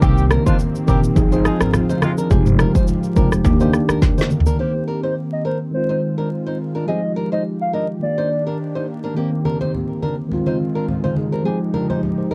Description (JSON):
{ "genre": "afrobeats", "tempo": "105 BPM", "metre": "4/4", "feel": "swing 55% on 16ths", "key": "unclear", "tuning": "A4 = 440 Hz", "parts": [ { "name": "mellow horn section", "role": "second line", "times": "0.0-2.1 s", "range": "C3 to Ab4", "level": "-28 LUFS", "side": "equal", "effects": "none" }, { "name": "mellow tine electric piano", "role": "accompaniment", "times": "0.0-12.3 s", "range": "Eb3 to Eb5", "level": "-23 LUFS", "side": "equal", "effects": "subtle chorus" }, { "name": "warm analog pad", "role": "sustained chords", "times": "0.0-12.3 s", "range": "Eb3 to G4", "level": "-33 LUFS", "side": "equal", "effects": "lush chorus" }, { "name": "flamenco guitar", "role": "riff", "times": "0.0-12.3 s", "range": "Bb3 to C5", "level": "-29 LUFS", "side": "equal", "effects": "analog delay" }, { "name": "upright bass", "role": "bass", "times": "0.0-4.1 s", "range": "F1 to Eb2", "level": "-21 LUFS", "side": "equal", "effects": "none" }, { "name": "afro-pop drum kit", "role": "drums", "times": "0.0-4.6 s", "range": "kick drum, rim click, shaker, snare drum, toms", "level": "-20 LUFS", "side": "equal", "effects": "none" }, { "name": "congas", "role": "percussion", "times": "0.3-4.5, 9.4-12.3 s", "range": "none", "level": "-28 LUFS", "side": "equal", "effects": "none" }, { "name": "hollow clarinet-like synth lead", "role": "melody", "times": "4.6-8.4 s", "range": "C5 to F5", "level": "-26 LUFS", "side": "equal", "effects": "chorus, analog delay" } ], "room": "light reverb", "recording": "dark, warm production, vinyl crackle", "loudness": "-19 LUFS", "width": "mono", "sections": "0.0-4.6 A section; 4.6-12.3 B section", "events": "drum fill 4.0-4.6", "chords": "0.0 Cm7; 1.2 Ab6; 2.3 Fm9; 3.5 Ebmaj7; 5.7 Ab6; 6.9 Fm9; 8.0 Ebmaj7; 10.3 Ab6; 11.4 Fm9" }